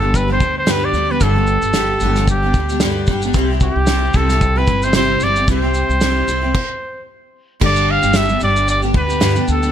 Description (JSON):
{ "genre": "acoustic pop", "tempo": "112 BPM", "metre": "4/4", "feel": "swing 55% on 16ths", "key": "unclear", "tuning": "A4 = 439 Hz", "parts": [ { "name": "clear trumpet", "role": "melody", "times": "0.0-9.7 s", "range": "G4 to F5", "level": "-18 LUFS", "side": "equal", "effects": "none" }, { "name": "picked steel-string acoustic guitar", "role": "accompaniment", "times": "0.0-9.7 s", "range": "G2 to G4", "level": "-19 LUFS", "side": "equal", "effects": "double-tracked left and right" }, { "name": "upright bass", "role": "bass", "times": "0.0-9.7 s", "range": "G1 to D2", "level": "-19 LUFS", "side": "equal", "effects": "none" }, { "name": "loose indie drum kit", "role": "drums", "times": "0.1-9.7 s", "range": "crash cymbal, kick drum, shaker, snare drum", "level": "-20 LUFS", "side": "equal", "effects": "none" } ], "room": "small room ambience", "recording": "none", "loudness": "-13 LUFS", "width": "side -9 dB against mid", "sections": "0.0-7.6 A section; 7.6-9.7 B section", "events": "stop 6.5-7.6", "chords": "0.0 G; 3.3 C; 7.6 G" }